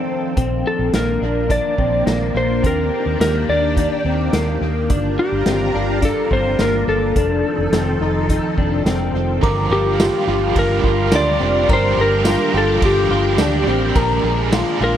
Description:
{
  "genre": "dream pop",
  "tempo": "106 BPM",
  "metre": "4/4",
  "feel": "straight",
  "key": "unclear",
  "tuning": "A4 = 440 Hz",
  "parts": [
    { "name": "string machine, full ensemble", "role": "sustained chords", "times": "0.0-15.0 s", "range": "Eb3 to Bb4", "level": "-23 LUFS", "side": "right 2 dB", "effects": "phaser, ensemble chorus" },
    { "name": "clean electric guitar", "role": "arpeggios", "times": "0.0-15.0 s", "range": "Bb3 to Bb4", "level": "-22 LUFS", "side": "left 4 dB", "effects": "ensemble chorus, tape echo" },
    { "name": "vintage muted fingered electric bass", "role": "bass", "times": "0.4-15.0 s", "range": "F1 to Eb2", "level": "-22 LUFS", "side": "right 1 dB", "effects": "none" },
    { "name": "vintage drum kit", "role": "drums", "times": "0.4-14.7 s", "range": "hi-hat, kick drum, ride cymbal, snare drum, tambourine", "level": "-22 LUFS", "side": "right 1 dB", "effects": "tape echo" },
    { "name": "electric slide guitar", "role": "melody", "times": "0.7-15.0 s", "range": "G4 to D5", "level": "-20 LUFS", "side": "left 1 dB", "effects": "tape echo" },
    { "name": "overdriven electric guitar", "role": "accompaniment", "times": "9.4-15.0 s", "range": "G2 to Ab4", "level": "-24 LUFS", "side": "right 7 dB", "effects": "tremolo, lush chorus, tape echo" },
    { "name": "glockenspiel with brass mallets", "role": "texture", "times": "9.4-13.1 s", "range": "C6 to F6", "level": "-31 LUFS", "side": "right 6 dB", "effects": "tape echo" }
  ],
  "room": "moderate spring reverb, RT60 1.5 s, small room ambience",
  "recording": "echo-heavy mix",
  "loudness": "-15 LUFS",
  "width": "side -10 dB against mid",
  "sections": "0.0-9.4 A section; 9.4-15.0 B section",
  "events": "none",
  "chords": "0.4 Bb; 2.6 Ebmaj7; 4.9 Gm7; 7.2 F7; 9.4 Gm7; 14.0 Bb7"
}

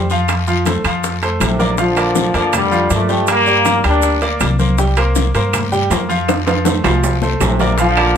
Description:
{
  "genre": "latin, salsa",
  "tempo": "160 BPM",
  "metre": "4/4",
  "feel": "straight",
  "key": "unclear",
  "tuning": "A4 = 443 Hz",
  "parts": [
    { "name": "bright concert grand piano", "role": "accompaniment", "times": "0.0-8.2 s", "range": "F3 to G5", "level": "-19 LUFS", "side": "equal", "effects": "none" },
    { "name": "upright bass", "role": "bass", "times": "0.0-8.2 s", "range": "Bb1 to G2", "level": "-19 LUFS", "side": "equal", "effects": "none" },
    { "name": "bongos", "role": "percussion", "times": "0.1-8.2 s", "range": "none", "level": "-24 LUFS", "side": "left 6 dB", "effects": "none" },
    { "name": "guiro", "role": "percussion", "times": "0.1-8.2 s", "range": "none", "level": "-28 LUFS", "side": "left 8 dB", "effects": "none" },
    { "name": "maracas", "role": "percussion", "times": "0.1-8.0 s", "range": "none", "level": "-29 LUFS", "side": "right 8 dB", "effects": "none" },
    { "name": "claves", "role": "percussion", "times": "0.3-8.2 s", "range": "none", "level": "-27 LUFS", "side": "right 8 dB", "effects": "none" },
    { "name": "congas", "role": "percussion", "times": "0.3-8.2 s", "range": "none", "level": "-24 LUFS", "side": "left 2 dB", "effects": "none" },
    { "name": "timbales", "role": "percussion", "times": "0.3-8.2 s", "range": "none", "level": "-21 LUFS", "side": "right 6 dB", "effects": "none" },
    { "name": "bright trombone section", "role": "melody", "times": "1.4-4.2, 7.4-8.2 s", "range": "A2 to D4", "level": "-16 LUFS", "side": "left 1 dB", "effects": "none" }
  ],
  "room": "moderate studio ambience, RT60 0.4 s",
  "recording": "none",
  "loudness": "-13 LUFS",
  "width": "side -8 dB against mid",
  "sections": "0.0-7.8 A section",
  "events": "drum fill 6.3-7.8",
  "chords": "0.3 F; 1.8 Bb; 3.3 Gm; 4.8 C5; 6.3 F"
}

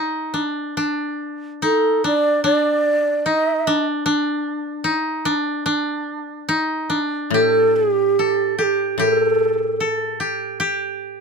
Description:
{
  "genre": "japanese traditional, Japanese chamber music",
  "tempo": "68-78 BPM",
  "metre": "2/4",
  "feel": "rubato",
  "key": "unclear",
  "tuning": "A4 = 443 Hz",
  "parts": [
    { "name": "koto", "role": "second line", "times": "0.0-11.2 s", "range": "D4 to A4", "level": "-21 LUFS", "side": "equal", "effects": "none" },
    { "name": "breathy mellow shakuhachi", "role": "melody", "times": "1.6-3.9, 7.3-10.2 s", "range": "G4 to Eb5", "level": "-17 LUFS", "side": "right 2 dB", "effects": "none" },
    { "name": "koto", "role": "accompaniment", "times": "7.3-11.2 s", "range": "A2", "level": "-28 LUFS", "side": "left 6 dB", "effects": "none" }
  ],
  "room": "light reverb",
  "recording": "close, detailed microphones",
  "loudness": "-17 LUFS",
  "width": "side -5 dB against mid",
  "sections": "0.0-7.3 A section; 7.3-11.2 B section",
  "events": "none",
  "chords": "none"
}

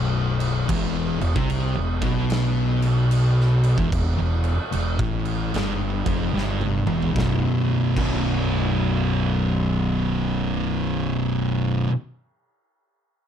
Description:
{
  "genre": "stoner and doom metal",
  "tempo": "74 BPM",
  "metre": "4/4",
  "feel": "swing 64% on 8ths",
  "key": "unclear",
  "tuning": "A4 = 440 Hz",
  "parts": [
    { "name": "thick fuzz guitar", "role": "riff", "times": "0.0-11.9 s", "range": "B1 to C3", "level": "-24 LUFS", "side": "left 6 dB", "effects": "distortion" },
    { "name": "fuzz fingered electric bass", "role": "bass", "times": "0.0-11.8 s", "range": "B0 to C2", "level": "-28 LUFS", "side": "equal", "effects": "overdrive" },
    { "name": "oversized low-tuned drum kit", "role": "drums", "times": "0.4-8.3 s", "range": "crash cymbal, kick drum, snare drum, toms", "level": "-28 LUFS", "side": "right 1 dB", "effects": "none" },
    { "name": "thick fuzz guitar", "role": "riff", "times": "0.7-11.9 s", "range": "B1 to C3", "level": "-24 LUFS", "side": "right 6 dB", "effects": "distortion" }
  ],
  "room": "light reverb",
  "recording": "dark, warm production",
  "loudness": "-20 LUFS",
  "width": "side -9 dB against mid",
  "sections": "0.0-7.2 A section; 7.2-10.4 B section",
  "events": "drum fill 6.3-7.2",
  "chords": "0.0 B5; 0.7 E5; 7.2 B5"
}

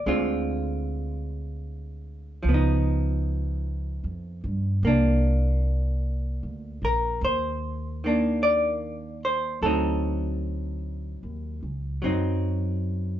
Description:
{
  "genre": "jazz ballad",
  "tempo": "50 BPM",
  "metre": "4/4",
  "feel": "swing 68% on 8ths",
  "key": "unclear",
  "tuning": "A4 = 440 Hz",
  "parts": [
    { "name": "vintage hollow-body jazz guitar", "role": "accompaniment", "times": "0.0-13.2 s", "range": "D3 to D5", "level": "-26 LUFS", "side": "equal", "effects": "none" },
    { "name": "upright bass", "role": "bass", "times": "0.0-13.2 s", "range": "Bb1 to G2", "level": "-27 LUFS", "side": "equal", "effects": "none" }
  ],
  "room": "moderate small room reverb, RT60 0.5 s",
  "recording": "band playing live in one room, nothing above 7.8 kHz",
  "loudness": "-24 LUFS",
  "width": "side -11 dB against mid",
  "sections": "0.0-13.2 A section",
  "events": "none",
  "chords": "0.0 Dm7b5; 2.4 Db9; 4.8 Cm9; 9.6 D7b9"
}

